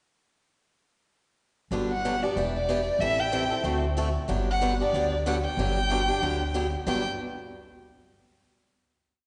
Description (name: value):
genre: acoustic string swing (jazz manouche)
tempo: 186 BPM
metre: 4/4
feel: swing 60% on 8ths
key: G major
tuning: A4 = 439 Hz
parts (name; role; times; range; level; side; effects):
- picked swing-style acoustic guitar; accompaniment; 1.7-7.0 s; G2 to A4; -32 LUFS; equal; none
- upright bass; bass; 1.7-7.0 s; E1 to D2; -33 LUFS; equal; none
- dark violin; melody; 1.9-7.0 s; D5 to G5; -30 LUFS; equal; none
room: wet concert hall reverb, RT60 1.9 s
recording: recorded in a church or concert hall, nothing above 10.3 kHz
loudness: -27 LUFS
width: mono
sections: 1.7-6.9 A section; 6.9-8.2 final chord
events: none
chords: 1.7 Gmaj7; 2.4 Em7; 3.0 Am7; 3.6 D7; 4.3 Gmaj7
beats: | 1.71 2.03 2.35 2.68 | 3.00 3.32 3.65 3.97 | 4.29 4.61 4.93 5.26 | 5.58 5.90 6.22 6.54 | 6.87